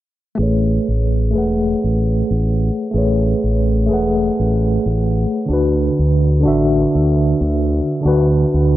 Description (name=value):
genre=sunset chillout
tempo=94 BPM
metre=4/4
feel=swing 55% on 16ths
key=A major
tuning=A4 = 441 Hz
part: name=tine electric piano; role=accompaniment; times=0.4-8.8 s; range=D3 to F#5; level=-16 LUFS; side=equal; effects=medium stereo tremolo, auto-pan, analog delay
part: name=fingered electric bass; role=bass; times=0.4-8.8 s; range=E1 to D2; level=-17 LUFS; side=equal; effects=none
room=little or no reverb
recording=dry, gritty hardware recording, low-pass filter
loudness=-14 LUFS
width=side -14 dB against mid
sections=0.4-8.8 A section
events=none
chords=0.4 Amaj9; 5.5 D6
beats=| 0.39 1.03 1.67 2.30 | 2.94 3.58 4.22 4.86 | 5.50 6.13 6.77 7.41 | 8.05 8.69